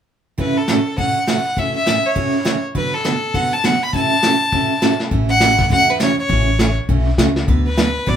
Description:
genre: country, western swing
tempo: 203 BPM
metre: 4/4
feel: swing 60% on 8ths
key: A major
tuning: A4 = 440 Hz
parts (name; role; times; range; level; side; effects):
- clear fiddle; melody; 0.4-8.2 s; A4 to B5; -18 LUFS; equal; none
- picked steel-string acoustic guitar; accompaniment; 0.4-8.2 s; A2 to B4; -21 LUFS; right 3 dB; none
- vintage brush drum kit; drums; 0.4-8.2 s; brushed snare drum, hi-hat, kick drum, snare drum; -21 LUFS; equal; none
- upright bass; bass; 5.1-8.2 s; A1 to E2; -18 LUFS; left 1 dB; none
room: moderate studio ambience, RT60 0.5 s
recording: band playing live in one room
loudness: -14 LUFS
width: side -9 dB against mid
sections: 0.4-5.1 A section; 5.1-8.2 B section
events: none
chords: 0.4 A6; 2.8 D6; 3.9 A6; 7.5 D6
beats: | 0.38 0.68 0.97 1.27 | 1.57 1.86 2.16 2.45 | 2.75 3.04 3.34 3.64 | 3.93 4.23 4.52 4.82 | 5.12 5.41 5.71 6.00 | 6.30 6.59 6.89 7.18 | 7.48 7.78 8.07

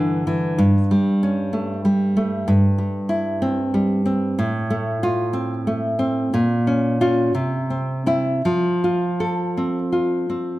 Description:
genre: romantic piece for solo classical guitar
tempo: 52-65 BPM (dotted quarters)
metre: 6/8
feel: rubato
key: F major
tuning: A4 = 444 Hz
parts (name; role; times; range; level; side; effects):
- nylon-string guitar; solo; 0.0-10.6 s; G2 to A4; -18 LUFS; equal; none
room: wet recital hall reverb, RT60 1.4 s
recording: none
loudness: -18 LUFS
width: side -16 dB against mid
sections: 0.0-10.6 A section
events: none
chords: 0.0 Em7/G; 0.6 A7/G; 2.5 C/G; 4.4 F/A; 6.3 Bbm; 7.3 C; 8.4 F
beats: | 0.58 1.53 | 2.46 3.40 | 4.37 5.34 | 6.31 7.34 | 8.44 9.56

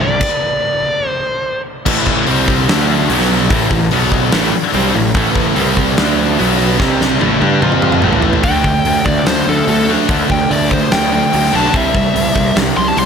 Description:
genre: hard rock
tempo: 146 BPM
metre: 4/4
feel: straight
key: unclear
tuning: A4 = 441 Hz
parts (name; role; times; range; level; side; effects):
- smooth overdriven lead guitar; melody; 0.0-1.6, 8.4-13.1 s; A4 to C6; -17 LUFS; equal; none
- hollow soft pad; sustained chords; 0.0-0.2, 5.1-13.1 s; F3 to E5; -27 LUFS; right 1 dB; none
- scooped high-gain guitar; riff; 0.0-13.1 s; G2 to G4; -18 LUFS; left 12 dB; distortion
- sludgy distorted guitar; riff; 0.0-13.1 s; G2 to G4; -18 LUFS; right 14 dB; overdrive
- fuzz picked electric bass; bass; 0.0-13.1 s; A1 to G2; -18 LUFS; equal; overdrive
- huge arena drum kit; drums; 0.2-13.1 s; crash cymbal, hi-hat, kick drum, snare drum, toms; -16 LUFS; equal; none
room: light reverb, studio ambience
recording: none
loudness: -11 LUFS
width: side -6 dB against mid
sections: 0.0-1.9 A section; 1.9-8.4 B section; 8.4-13.1 C section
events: stop 0.2-1.9; drum fill 6.8-8.4; lead electric guitar solo 8.4-13.1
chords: 0.0 G5; 1.9 A5; 2.3 C5; 2.7 D5; 3.1 B5; 3.5 A5; 3.9 B5; 4.3 Am; 5.6 C5; 6.0 D5; 6.4 B5; 6.8 C5; 7.2 A5; 7.6 F5; 8.0 A5; 8.4 D5; 11.7 C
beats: | 0.21 0.62 1.04 1.45 | 1.86 2.27 2.68 3.09 | 3.50 3.91 4.33 4.74 | 5.15 5.56 5.97 6.38 | 6.79 7.20 7.62 8.03 | 8.44 8.85 9.26 9.68 | 10.09 10.50 10.91 11.33 | 11.74 12.15 12.56 12.98

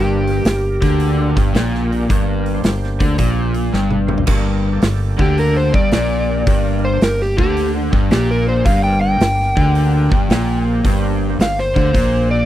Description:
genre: blues rock power trio and southern rock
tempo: 110 BPM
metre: 4/4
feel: swing 67% on 8ths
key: G minor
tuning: A4 = 440 Hz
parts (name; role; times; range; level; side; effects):
- overdriven slide guitar; melody; 0.0-12.5 s; G4 to G5; -20 LUFS; equal; none
- overdriven tonewheel organ; sustained chords; 0.0-12.3 s; Bb3 to C5; -29 LUFS; right 4 dB; chorus vibrato, slow rotary speaker
- overdriven semi-hollow guitar; riff; 0.0-12.5 s; G2 to D3; -19 LUFS; left 1 dB; none
- modern bright fingered electric bass; bass; 0.0-12.5 s; G1 to D2; -19 LUFS; equal; none
- big rock drum kit; drums; 0.3-12.1 s; crash cymbal, hi-hat, kick drum, snare drum, toms; -18 LUFS; equal; none
room: little or no reverb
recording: dry, close 1970s-style studio recording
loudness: -14 LUFS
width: side -13 dB against mid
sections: 0.0-4.3 A section; 4.3-12.5 B section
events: drum fill 3.7-4.3; electric slide guitar solo 4.3-12.5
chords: 0.0 Gm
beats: 0.46 1.00 1.55 | 2.09 2.64 3.18 3.73 | 4.28 4.82 5.37 5.92 | 6.46 7.01 7.56 8.11 | 8.65 9.20 9.75 10.30 | 10.85 11.39 11.94

